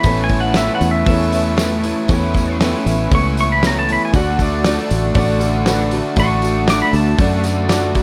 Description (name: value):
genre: folk rock and heartland rock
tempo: 118 BPM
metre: 4/4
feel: straight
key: unclear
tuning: A4 = 440 Hz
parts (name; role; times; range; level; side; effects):
- pedal steel guitar; second line; 0.0-7.4 s; D5 to D6; -24 LUFS; equal; none
- dark upright piano; accompaniment; 0.0-8.0 s; F#4 to E5; -29 LUFS; equal; none
- picked acoustic archtop guitar; accompaniment; 0.0-8.0 s; A2 to F#4; -26 LUFS; equal; none
- raw garage guitar; riff; 0.0-8.0 s; A2 to F#4; -24 LUFS; equal; overdrive
- fingered electric bass; bass; 0.0-8.0 s; A1 to F#2; -21 LUFS; equal; none
- loose indie drum kit; drums; 0.0-8.0 s; hi-hat, kick drum, snare drum; -22 LUFS; equal; none
- musette accordion; sustained chords; 0.1-8.0 s; A4 to C#6; -32 LUFS; equal; none
- tambourine; percussion; 0.1-8.0 s; none; -38 LUFS; equal; none
room: little or no reverb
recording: none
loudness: -16 LUFS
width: mono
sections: 0.0-8.0 A section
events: pedal steel guitar solo 0.0-8.0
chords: 0.1 Aadd9; 4.1 D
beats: | 0.06 0.57 1.08 1.59 | 2.10 2.61 3.12 3.63 | 4.14 4.65 5.16 5.67 | 6.18 6.69 7.20 7.71